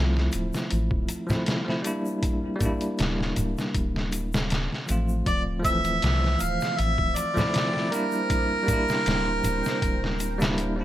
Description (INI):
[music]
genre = trip hop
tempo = 79 BPM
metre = 4/4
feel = straight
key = D minor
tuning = A4 = 440 Hz
[part]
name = bell-like tine electric piano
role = accompaniment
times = 0.0-10.8 s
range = E3 to F4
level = -29 LUFS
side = equal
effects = tremolo, vintage 12-bit sampler grit, tape echo
[part]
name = soft dub sub bass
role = bass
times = 0.0-10.8 s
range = D1 to C2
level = -28 LUFS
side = equal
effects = none
[part]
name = trip hop sampler-style drum kit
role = drums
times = 0.2-10.8 s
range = hi-hat, kick drum, snare drum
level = -28 LUFS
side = equal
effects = none
[part]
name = egg shaker and congas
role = percussion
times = 0.3-10.7 s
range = none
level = -32 LUFS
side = equal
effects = none
[part]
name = mellow harmonica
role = melody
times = 5.3-10.8 s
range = Bb4 to F5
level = -27 LUFS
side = right 1 dB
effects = vintage 12-bit sampler grit, tape echo
[part]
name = backwards swelling texture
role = texture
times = 6.2-10.8 s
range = C4 to C5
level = -39 LUFS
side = right 2 dB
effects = built-in reverb
[sound]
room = light reverb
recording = vinyl crackle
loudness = -23 LUFS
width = side -13 dB against mid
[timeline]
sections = 0.0-10.8 A section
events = none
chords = 0.0 Dm9